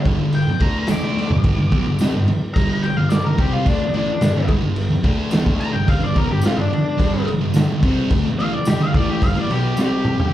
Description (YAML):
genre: garage rock duo or trio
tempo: 108 BPM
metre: 4/4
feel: straight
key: G mixolydian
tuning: A4 = 440 Hz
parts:
  - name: thick fuzz guitar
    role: riff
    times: 0.0-10.3 s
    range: G2 to D4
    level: -19 LUFS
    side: equal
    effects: distortion, slapback echo
  - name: raw garage drum kit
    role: drums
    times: 0.1-10.3 s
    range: crash cymbal, kick drum, snare drum, toms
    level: -20 LUFS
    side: equal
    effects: none
  - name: octave-fuzz lead guitar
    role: melody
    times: 0.3-10.3 s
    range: D4 to D6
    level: -25 LUFS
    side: left 2 dB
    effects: distortion, plate reverb
  - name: tambourine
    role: percussion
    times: 0.9-9.9 s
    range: none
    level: -40 LUFS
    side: left 2 dB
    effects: none
room: moderate club reverb, RT60 0.6 s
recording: live gig heard through the venue's PA, club ambience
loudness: -16 LUFS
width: side -13 dB against mid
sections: 0.0-10.3 A section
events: lead electric guitar solo 0.0-10.3; drum fill 1.2, 9.8-10.3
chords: 0.0 G5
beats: 0.33 0.88 | 1.44 1.99 2.55 3.11 | 3.66 4.22 4.78 5.33 | 5.89 6.44 7.00 7.55 | 8.11 8.66 9.22 9.78